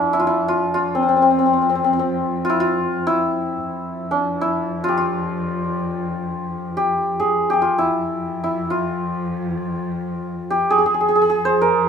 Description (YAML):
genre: Persian modal ensemble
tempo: free time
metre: none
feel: none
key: F avaz esfahan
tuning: A4 = 441 Hz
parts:
  - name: santur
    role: melody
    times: 0.0-11.9 s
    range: C4 to C5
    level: -18 LUFS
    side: equal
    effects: none
  - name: dark cello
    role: drone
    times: 0.0-11.9 s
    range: F2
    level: -28 LUFS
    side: left 2 dB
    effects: none
room: wet small room ambience, RT60 0.5 s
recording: band playing live in one room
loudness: -18 LUFS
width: side -7 dB against mid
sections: 0.0-11.9 A section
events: none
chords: none